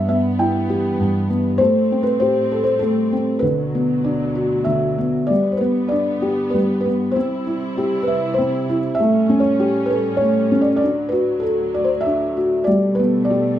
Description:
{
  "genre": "children's music, lullaby",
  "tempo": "98 BPM",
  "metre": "3/4",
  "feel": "rubato",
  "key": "G major",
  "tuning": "A4 = 441 Hz",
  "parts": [
    { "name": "felt-muted upright piano", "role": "melody", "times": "0.0-13.6 s", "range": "G2 to G5", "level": "-16 LUFS", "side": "equal", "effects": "none" },
    { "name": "dark studio string section", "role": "sustained chords", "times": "0.0-13.6 s", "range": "D2 to E4", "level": "-27 LUFS", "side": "right 2 dB", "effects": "none" }
  ],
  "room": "moderate large studio reverb, RT60 0.8 s",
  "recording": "band playing live in one room",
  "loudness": "-16 LUFS",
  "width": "side -11 dB against mid",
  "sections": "0.0-5.3 A section; 5.3-13.6 B section",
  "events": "none",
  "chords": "0.0 Em/G; 1.6 Am7; 3.4 D6; 5.3 G; 7.2 C; 9.0 A7; 10.8 D; 12.7 Gadd9"
}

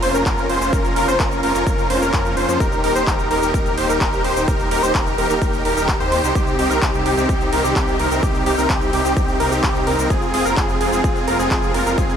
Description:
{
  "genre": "EDM, festival progressive house",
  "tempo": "128 BPM",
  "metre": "4/4",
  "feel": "straight",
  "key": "unclear",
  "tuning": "A4 = 440 Hz",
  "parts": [
    { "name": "clear studio string section", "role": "sustained chords", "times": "0.0-12.2 s", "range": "C3 to G4", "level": "-28 LUFS", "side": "left 2 dB", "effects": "sidechain pumping" },
    { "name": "wide unison lead", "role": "arpeggios", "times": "0.0-12.2 s", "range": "G4 to C5", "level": "-22 LUFS", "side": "equal", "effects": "sidechain pumping, digital delay" },
    { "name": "supersaw chords", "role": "riff", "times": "0.0-12.2 s", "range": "C4 to C5", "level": "-21 LUFS", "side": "equal", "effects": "sidechain pumping, digital delay" },
    { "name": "wide detuned saw bass", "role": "bass", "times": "0.0-12.2 s", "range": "Eb1 to F2", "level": "-26 LUFS", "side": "equal", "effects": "chorus, sidechain pumping" },
    { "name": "big-room dance drum kit", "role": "drums", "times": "0.0-12.2 s", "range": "cabasa, handclaps, hi-hat", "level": "-26 LUFS", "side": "left 1 dB", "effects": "none" },
    { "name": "electronic kick drum", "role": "drums", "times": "0.3-12.1 s", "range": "none", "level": "-21 LUFS", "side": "equal", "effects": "none" }
  ],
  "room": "light reverb",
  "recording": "none",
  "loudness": "-16 LUFS",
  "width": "side -8 dB against mid",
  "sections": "0.0-12.2 A section",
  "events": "none",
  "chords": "0.0 Bbm/F; 2.6 Eb; 6.4 Cm; 10.1 Fm"
}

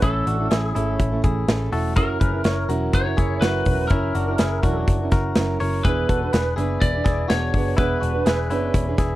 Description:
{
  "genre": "jangly indie pop",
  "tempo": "124 BPM",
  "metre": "4/4",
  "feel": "straight",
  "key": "E mixolydian",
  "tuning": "A4 = 440 Hz",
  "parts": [
    { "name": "lightly driven lead guitar", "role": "melody", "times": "0.0-8.7 s", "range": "A4 to D5", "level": "-26 LUFS", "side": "equal", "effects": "slapback echo" },
    { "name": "fingerpicked plugged-in steel-string acoustic guitar", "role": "accompaniment", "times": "0.0-9.2 s", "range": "A2 to B4", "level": "-27 LUFS", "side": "right 4 dB", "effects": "none" },
    { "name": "direct-recorded clean electric guitar", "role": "arpeggios", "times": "0.0-9.2 s", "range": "B3 to C#5", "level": "-28 LUFS", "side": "left 4 dB", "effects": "slapback echo" },
    { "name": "vintage muted picked electric bass", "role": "bass", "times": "0.0-9.2 s", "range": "E1 to A1", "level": "-24 LUFS", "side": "equal", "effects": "none" },
    { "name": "big rock drum kit", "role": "drums", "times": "0.0-9.1 s", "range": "hi-hat, kick drum, snare drum", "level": "-22 LUFS", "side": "equal", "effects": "none" }
  ],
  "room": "little or no reverb",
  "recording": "dry, close 1970s-style studio recording",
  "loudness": "-18 LUFS",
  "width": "side -16 dB against mid",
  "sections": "0.0-9.2 A section",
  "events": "none",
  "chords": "0.0 A; 2.0 F#7; 5.8 E7"
}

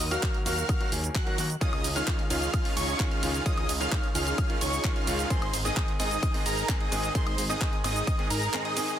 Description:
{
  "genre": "EDM, festival progressive house",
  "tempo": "130 BPM",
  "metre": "4/4",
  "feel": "straight",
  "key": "unclear",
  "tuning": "A4 = 441 Hz",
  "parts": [
    { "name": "wide unison lead", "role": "arpeggios", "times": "0.0-9.0 s", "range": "Bb5 to Gb6", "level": "-34 LUFS", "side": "equal", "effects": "sidechain pumping, digital delay" },
    { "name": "big supersaw lead", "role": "riff", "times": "0.0-9.0 s", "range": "Db4 to Gb5", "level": "-33 LUFS", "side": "right 1 dB", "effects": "cassette tape, sidechain pumping, digital delay" },
    { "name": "fat analog bass", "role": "bass", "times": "0.0-8.5 s", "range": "Ab1 to Eb2", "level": "-32 LUFS", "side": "equal", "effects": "sidechain pumping" },
    { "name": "house drum kit", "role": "drums", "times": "0.0-9.0 s", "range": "handclaps, hi-hat, ride cymbal, shaker, woodblock", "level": "-33 LUFS", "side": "right 2 dB", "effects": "none" },
    { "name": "bright baby grand piano", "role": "accompaniment", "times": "0.1-9.0 s", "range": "Ab2 to Ab4", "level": "-35 LUFS", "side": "equal", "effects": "sidechain pumping, digital delay" },
    { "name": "electronic kick drum", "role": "drums", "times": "0.2-8.2 s", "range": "none", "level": "-28 LUFS", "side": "equal", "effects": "overdrive" }
  ],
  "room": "little or no reverb",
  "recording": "dense, heavily limited modern master",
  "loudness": "-25 LUFS",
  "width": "side -10 dB against mid",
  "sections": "0.0-9.0 A section",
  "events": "drop 0.0-9.0",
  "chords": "0.0 Ebm; 1.6 Dbadd9; 5.3 Ab"
}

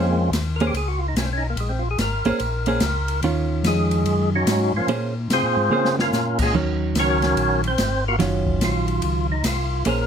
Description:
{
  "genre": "soul jazz organ trio",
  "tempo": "145 BPM",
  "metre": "4/4",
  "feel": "swing 64% on 8ths",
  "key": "unclear",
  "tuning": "A4 = 440 Hz",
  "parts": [
    { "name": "percussive tonewheel organ", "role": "melody", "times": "0.0-10.1 s", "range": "F3 to Db5", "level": "-23 LUFS", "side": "equal", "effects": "slow rotary speaker, overdrive" },
    { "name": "hollow-body jazz guitar", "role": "accompaniment", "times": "0.0-10.1 s", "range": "Eb3 to C5", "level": "-23 LUFS", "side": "right 4 dB", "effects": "none" },
    { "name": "mellow tonewheel organ", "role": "bass", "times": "0.0-10.1 s", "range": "Gb1 to Db3", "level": "-24 LUFS", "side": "left 1 dB", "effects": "chorus vibrato, slow rotary speaker" },
    { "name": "open jazz drum kit", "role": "drums", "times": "0.3-10.0 s", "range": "crash cymbal, hi-hat, kick drum, ride cymbal, snare drum", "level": "-27 LUFS", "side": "left 1 dB", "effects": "none" }
  ],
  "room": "light reverb",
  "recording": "none",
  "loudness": "-19 LUFS",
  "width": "side -8 dB against mid",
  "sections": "0.0-10.1 A section",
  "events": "tonewheel organ solo 0.0-10.1; drum fill 5.7-6.1",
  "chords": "0.0 Bbm9; 3.2 Ebm9; 4.9 Bbm9; 6.5 Ebm9"
}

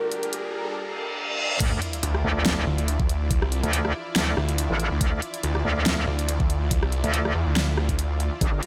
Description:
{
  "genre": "heavy wobble dubstep",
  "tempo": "141 BPM",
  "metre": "4/4",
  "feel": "swing 54% on 16ths, half-time",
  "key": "D minor",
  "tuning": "A4 = 440 Hz",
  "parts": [
    { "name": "felt-muted upright piano", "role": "melody", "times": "0.0-0.8 s", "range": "Bb4", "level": "-34 LUFS", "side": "equal", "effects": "tape echo" },
    { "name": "supersaw pad", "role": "sustained chords", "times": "0.0-8.7 s", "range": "G3 to D5", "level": "-36 LUFS", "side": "equal", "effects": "sidechain pumping" },
    { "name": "riser, reverse cymbal and sub drop", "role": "sound effects", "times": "0.0-3.3 s", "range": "none", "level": "-32 LUFS", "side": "equal", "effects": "none" },
    { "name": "warbly tape-like pad", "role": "texture", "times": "0.0-0.8 s", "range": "F4 to Bb5", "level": "-43 LUFS", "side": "equal", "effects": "chorus, built-in reverb, sidechain pumping" },
    { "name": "dubstep drum kit", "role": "drums", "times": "0.1-8.7 s", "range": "crash cymbal, hi-hat, rim click, snare drum", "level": "-30 LUFS", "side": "equal", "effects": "overdrive" },
    { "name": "metallic wobble bass", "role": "bass", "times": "1.6-8.6 s", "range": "G1 to D2", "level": "-26 LUFS", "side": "equal", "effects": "chorus, overdrive" },
    { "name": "electronic kick drum", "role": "drums", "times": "1.6-8.5 s", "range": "none", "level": "-27 LUFS", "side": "equal", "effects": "overdrive" },
    { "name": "snarling distorted saw bass", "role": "bass", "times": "2.0-8.3 s", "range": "C2 to E2", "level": "-27 LUFS", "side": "equal", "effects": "distortion, overdrive" }
  ],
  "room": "light reverb",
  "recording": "high-pass filter",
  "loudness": "-25 LUFS",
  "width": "mono",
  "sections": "0.0-1.6 A section; 1.6-8.7 B section",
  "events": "build-up 0.0-1.6; riser 0.0-0.8; filter sweep on supersaw synth 0.0-1.6; filter sweep 0.0-1.6; reverse cymbal 0.8-1.6; drop 1.6-8.7; impact 1.6-3.3",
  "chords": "0.0 Gm; 1.6 Dmadd9"
}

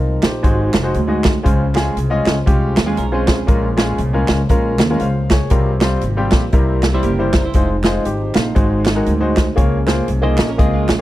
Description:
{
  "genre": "uptempo gospel",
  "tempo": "118 BPM",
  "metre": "4/4",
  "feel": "swing 60% on 8ths",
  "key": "unclear",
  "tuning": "A4 = 440 Hz",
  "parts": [
    { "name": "clear baby grand piano", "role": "accompaniment", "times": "0.0-11.0 s", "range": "Ab2 to F5", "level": "-19 LUFS", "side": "left 1 dB", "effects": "none" },
    { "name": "mellow French horn section", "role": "sustained chords", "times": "0.0-11.0 s", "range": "Db3 to Eb4", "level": "-29 LUFS", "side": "right 1 dB", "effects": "none" },
    { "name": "upright bass", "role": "bass", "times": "0.0-11.0 s", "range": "F1 to Eb2", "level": "-19 LUFS", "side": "equal", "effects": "none" },
    { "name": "swinging big-band drum kit", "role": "drums", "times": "0.2-11.0 s", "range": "hi-hat, kick drum, snare drum", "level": "-17 LUFS", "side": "equal", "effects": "none" },
    { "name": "group handclap", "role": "percussion", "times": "0.2-11.0 s", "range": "none", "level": "-30 LUFS", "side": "right 4 dB", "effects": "none" },
    { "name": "twelve-string electric guitar", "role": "second line", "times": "2.9-3.5, 6.9-11.0 s", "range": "G3 to C5", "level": "-24 LUFS", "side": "right 6 dB", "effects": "none" }
  ],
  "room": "small room reverb",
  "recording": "dry, close 1970s-style studio recording",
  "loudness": "-13 LUFS",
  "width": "side -15 dB against mid",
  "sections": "0.0-11.0 A section",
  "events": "none",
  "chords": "0.4 Ab7; 1.5 Dbmaj7; 3.5 Bbm7; 5.5 C7sus4; 6.5 C7; 7.5 Fm7; 8.6 Ab7; 9.6 Db6"
}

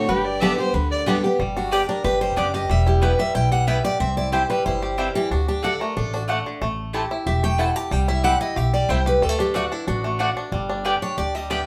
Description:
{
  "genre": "bluegrass",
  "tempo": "184 BPM",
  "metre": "4/4",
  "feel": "straight",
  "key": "G major",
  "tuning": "A4 = 439 Hz",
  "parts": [
    { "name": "rich fiddle", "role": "melody", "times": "0.0-1.0 s", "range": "B4 to E5", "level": "-28 LUFS", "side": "equal", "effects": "none" },
    { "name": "lap resonator guitar", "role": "second line", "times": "0.0-1.2 s", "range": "G4 to A4", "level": "-31 LUFS", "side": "equal", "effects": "none" },
    { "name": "picked steel-string acoustic guitar", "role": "accompaniment", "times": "0.0-11.7 s", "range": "G2 to A5", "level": "-26 LUFS", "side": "equal", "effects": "none" },
    { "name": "upright bass", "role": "bass", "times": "0.1-11.6 s", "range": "E1 to D2", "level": "-27 LUFS", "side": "equal", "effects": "none" },
    { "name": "bluegrass banjo", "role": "arpeggios", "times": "0.4-11.7 s", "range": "D3 to G4", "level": "-28 LUFS", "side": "equal", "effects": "none" },
    { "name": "mandolin", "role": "stabs", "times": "0.4-11.6 s", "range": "A3 to A5", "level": "-27 LUFS", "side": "equal", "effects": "none" }
  ],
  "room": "moderate studio reverb, RT60 0.6 s",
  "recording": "band playing live in one room",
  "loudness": "-22 LUFS",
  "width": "mono",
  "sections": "0.0-1.4 A section; 1.4-11.7 B section",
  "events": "steel-string acoustic guitar solo 1.4-11.7",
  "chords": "0.1 Gadd9; 1.4 G; 2.7 Em; 4.0 C; 5.3 D; 6.6 Am; 7.9 C; 9.2 D; 10.5 G"
}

